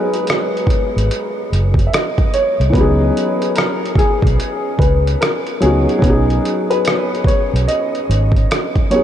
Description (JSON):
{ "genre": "lo-fi hip hop", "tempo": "73 BPM", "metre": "4/4", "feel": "swing 64% on 16ths", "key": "B major", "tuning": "A4 = 440 Hz", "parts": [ { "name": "dark upright piano", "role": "melody", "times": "0.0-9.0 s", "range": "G#4 to E5", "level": "-20 LUFS", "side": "left 1 dB", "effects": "lush chorus, low-pass filter, diffuse ambient delay" }, { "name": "felt-muted upright piano", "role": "accompaniment", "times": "0.0-9.0 s", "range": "E3 to G#4", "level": "-20 LUFS", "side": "left 1 dB", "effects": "cassette tape, low-pass filter" }, { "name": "dusty soul sampler-style drum kit", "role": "drums", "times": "0.1-9.0 s", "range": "hi-hat, kick drum, rim click", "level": "-18 LUFS", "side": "right 1 dB", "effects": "overdrive" }, { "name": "vintage muted fingered electric bass", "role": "bass", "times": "1.0-8.4 s", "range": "F#1 to C#2", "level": "-16 LUFS", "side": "equal", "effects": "none" } ], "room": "moderate huge ambient reverb, RT60 9.7 s", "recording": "dreamy mix soaked in reverb, cassette tape", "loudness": "-13 LUFS", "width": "side -10 dB against mid", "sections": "0.0-9.0 A section", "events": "none", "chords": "0.0 G#m7; 2.7 C#9sus4; 6.0 B69" }